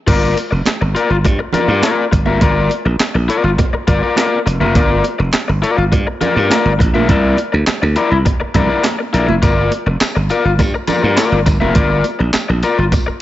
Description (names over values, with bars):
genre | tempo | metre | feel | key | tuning
funk | 103 BPM | 4/4 | straight | G dorian | A4 = 445 Hz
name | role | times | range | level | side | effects
crunchy overdriven guitar | accompaniment | 0.1-13.1 s | E4 to E5 | -16 LUFS | left 4 dB | spring reverb
slap bass | bass | 0.1-13.1 s | F1 to G2 | -16 LUFS | right 1 dB | none
breakbeat sampler-style drum kit | drums | 0.1-13.1 s | crash cymbal, handclaps, hi-hat, kick drum, snare drum | -17 LUFS | right 1 dB | none
congas | percussion | 0.4-13.1 s | none | -24 LUFS | right 7 dB | none
tambourine | percussion | 9.4-13.1 s | none | -32 LUFS | left 2 dB | none
room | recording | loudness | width
digital ambience | nothing above 7.7 kHz | -12 LUFS | side -14 dB against mid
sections
0.1-13.2 A section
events
none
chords
0.1 Gm7; 7.1 C9; 9.4 Gm7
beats
| 0.07 0.66 1.25 1.83 | 2.42 3.00 3.58 4.17 | 4.75 5.34 5.92 6.51 | 7.09 7.67 8.26 8.84 | 9.43 10.01 10.59 11.18 | 11.76 12.34 12.93